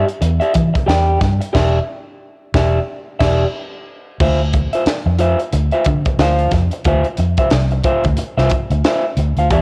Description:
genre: funk.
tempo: 90 BPM.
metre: 4/4.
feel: swing 60% on 16ths.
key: D minor.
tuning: A4 = 440 Hz.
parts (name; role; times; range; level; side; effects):
electric guitar through a small old amp; accompaniment; 0.0-9.6 s; F4 to G5; -21 LUFS; equal; cassette tape.
vintage muted fingered electric bass; bass; 0.0-9.6 s; E1 to E3; -19 LUFS; equal; none.
crisp fusion drum kit; drums; 0.1-9.6 s; crash cymbal, hi-hat, kick drum, snare drum; -22 LUFS; equal; cassette tape.
room: light reverb, small room ambience.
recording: home recording on cassette.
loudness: -16 LUFS.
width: mono.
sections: 0.0-4.2 A section; 4.2-9.6 B section.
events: band accent 1.5-4.2.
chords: 0.0 Em7; 4.2 Dm9.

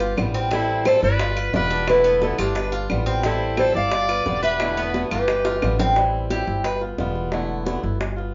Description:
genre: latin, Cuban son and guajira.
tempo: 176 BPM.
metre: 4/4.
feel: straight.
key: A minor.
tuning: A4 = 440 Hz.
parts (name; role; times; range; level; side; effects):
nylon-string guitar; melody; 0.0-5.8 s; G4 to F5; -24 LUFS; equal; none.
bright trumpet; second line; 0.0-5.8 s; D4 to D5; -29 LUFS; equal; none.
fingerpicked swing-style acoustic guitar; accompaniment; 0.0-8.3 s; D3 to F4; -31 LUFS; equal; none.
Cuban tres; arpeggios; 0.0-6.8 s; B3 to B4; -29 LUFS; equal; none.
upright bass; bass; 0.0-8.3 s; E1 to A1; -29 LUFS; equal; none.
bongos; percussion; 0.0-8.3 s; none; -31 LUFS; equal; none.
claves; percussion; 0.2-5.8 s; none; -36 LUFS; equal; none.
room: wet studio reverb, RT60 0.6 s.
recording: band playing live in one room, nothing above 7.4 kHz.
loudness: -21 LUFS.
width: mono.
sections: 0.0-6.0 A section; 6.0-8.3 B section.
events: drum fill 5.5-6.0; Cuban tres solo 6.0-8.3.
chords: 0.0 G7; 0.5 Am7; 1.2 G7; 1.9 E7sus4; 2.6 G7; 3.2 Am7; 3.9 G7; 4.6 E7sus4; 5.3 G7; 6.0 Am7; 6.6 G7; 7.3 E7sus4.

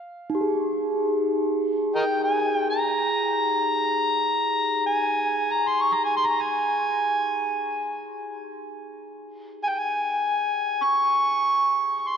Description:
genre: world meditative, free-time meditation music.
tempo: free time.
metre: none.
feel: none.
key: unclear.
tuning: A4 = 440 Hz.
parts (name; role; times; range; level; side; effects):
bronze singing bowl; texture; 0.3-8.4 s; Eb4 to Ab4; -28 LUFS; equal; none.
overdriven harmonica; melody; 2.0-12.2 s; Bb4 to Db6; -22 LUFS; equal; none.
room: wet cathedral reverb, RT60 5.0 s.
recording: in a vast, echoing space, nothing above 10.4 kHz.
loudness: -21 LUFS.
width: side -7 dB against mid.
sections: 0.0-12.2 A section.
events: none.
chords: none.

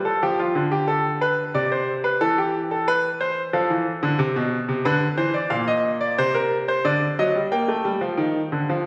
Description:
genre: classical, baroque-style two-part invention for grand piano.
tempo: 90 BPM.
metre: 3/4.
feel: straight.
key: G minor from 5.5 s.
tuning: A4 = 440 Hz.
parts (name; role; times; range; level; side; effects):
bright grand piano; solo; 0.0-8.9 s; Bb2 to G5; -22 LUFS; equal; none.
room: moderate concert hall reverb, RT60 2.2 s.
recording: recorded on a phone in the room, studio reverb, compression.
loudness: -22 LUFS.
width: mono.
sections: 0.0-8.9 A section.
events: none.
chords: 0.0 F; 0.9 Bm7/D; 1.5 C; 2.9 Cmaj7/E; 3.5 Dm; 4.9 Cmaj9/D; 5.5 Bbadd11; 6.2 Bbsus2/C; 6.9 D; 7.5 G5.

